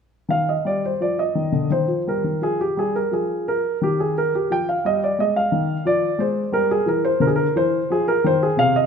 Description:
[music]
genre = classical, baroque-style suite movement for grand piano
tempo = 87 BPM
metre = 3/4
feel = rubato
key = Eb major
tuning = A4 = 440 Hz
[part]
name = warm baby grand piano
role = solo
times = 0.3-8.9 s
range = C3 to G5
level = -18 LUFS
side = equal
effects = none
[sound]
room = moderate recital hall reverb, RT60 1.8 s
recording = close, detailed microphones, faint mains hum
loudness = -18 LUFS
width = side -6 dB against mid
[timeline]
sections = 0.3-8.9 A section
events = none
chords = 0.3 Eb; 2.4 Fmadd9; 3.8 N.C.; 4.5 Fm; 6.5 C9; 7.9 Ab69

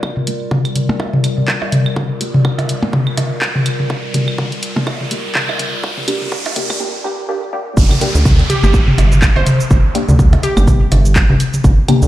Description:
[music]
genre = minimal techno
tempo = 124 BPM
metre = 4/4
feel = swing 57% on 16ths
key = G minor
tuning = A4 = 441 Hz
[part]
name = electronic kick drum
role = drums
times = 0.0-11.8 s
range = none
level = -14 LUFS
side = equal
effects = high-pass filter on kick, high-pass filter on room
[part]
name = electronic claves, toms and percussion blips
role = percussion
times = 0.0-12.0 s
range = none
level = -17 LUFS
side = left 1 dB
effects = digital delay
[part]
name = riser and downlifter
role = sound effects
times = 1.4-11.6 s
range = none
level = -25 LUFS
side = right 1 dB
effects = none
[part]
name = warbly tape-like pad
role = texture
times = 0.0-6.8 s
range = G3 to D5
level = -26 LUFS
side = equal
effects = chorus, built-in reverb, sidechain pumping
[part]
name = filtered dub chord stab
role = stabs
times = 0.3-12.0 s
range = Bb3 to G4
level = -21 LUFS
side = left 1 dB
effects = phaser, lush chorus, digital delay
[part]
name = punchy analog drum machine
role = drums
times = 0.3-12.1 s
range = handclaps, hi-hat, shaker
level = -22 LUFS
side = equal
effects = high-pass filter on snare, low-pass filter on snare, high-pass filter on hats, low-pass filter on hats, high-pass filter on perc, low-pass filter on perc, high-pass filter on room, low-pass filter on room
[part]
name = rubbery square bass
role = bass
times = 7.8-12.1 s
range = G1 to D2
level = -13 LUFS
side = equal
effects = sidechain pumping
[part]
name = glassy wavetable pluck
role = melody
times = 8.5-11.1 s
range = G4 to C5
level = -22 LUFS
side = right 2 dB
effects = chorus, digital delay
[sound]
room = light reverb, digital ambience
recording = played on a big sound system in a bare room, large studio reverb, high-pass filter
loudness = -12 LUFS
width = side -14 dB against mid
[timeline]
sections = 0.0-7.8 A section; 7.8-12.1 B section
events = build-up 0.0-7.8; filter sweep on synth stab 0.0-7.8; filter sweep 0.0-7.8; riser 1.4-6.8; drop 7.8-12.1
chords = 0.0 Gm; 7.8 G5

